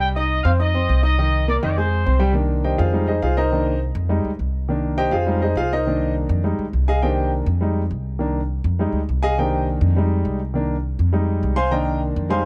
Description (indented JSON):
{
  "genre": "latin, salsa",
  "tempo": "205 BPM",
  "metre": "4/4",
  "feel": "straight",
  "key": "C minor",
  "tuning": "A4 = 440 Hz",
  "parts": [
    { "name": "bright trumpet section", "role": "melody", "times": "0.0-2.2 s", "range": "C5 to G5", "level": "-26 LUFS", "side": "equal", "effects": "none" },
    { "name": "clear concert grand piano", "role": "accompaniment", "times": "0.0-12.5 s", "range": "Eb3 to Eb6", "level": "-24 LUFS", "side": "equal", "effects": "none" },
    { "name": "upright bass", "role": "bass", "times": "0.0-12.5 s", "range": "C2 to F2", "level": "-23 LUFS", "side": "equal", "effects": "none" }
  ],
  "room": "studio ambience",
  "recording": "dry, close 1970s-style studio recording",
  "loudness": "-20 LUFS",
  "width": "mono",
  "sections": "0.0-2.4 A section; 2.4-12.5 B section",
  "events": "grand piano solo 2.4-12.5",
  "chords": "0.0 Cm; 0.6 F5; 1.2 Cm7; 1.8 Fm; 2.4 Cm7; 2.9 Fm7; 3.5 Cm7; 4.1 Fm7; 4.7 Cm7; 5.3 Fm7; 5.9 Cm7; 6.4 Fm7; 7.0 Cm7; 7.6 Fm7; 8.2 Cm7; 8.8 Fm7; 9.4 Cm7; 10.0 Fm7; 10.6 Cm7; 11.1 Fm7; 11.7 Cm7",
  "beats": "| 0.01 0.30 0.60 0.89 | 1.18 1.47 1.76 2.06 | 2.35 2.64 2.93 3.23 | 3.52 3.81 4.10 4.40 | 4.69 4.98 5.27 5.57 | 5.86 6.15 6.44 6.74 | 7.03 7.32 7.62 7.91 | 8.20 8.49 8.79 9.08 | 9.38 9.67 9.96 10.26 | 10.55 10.84 11.14 11.43 | 11.72 12.02 12.31"
}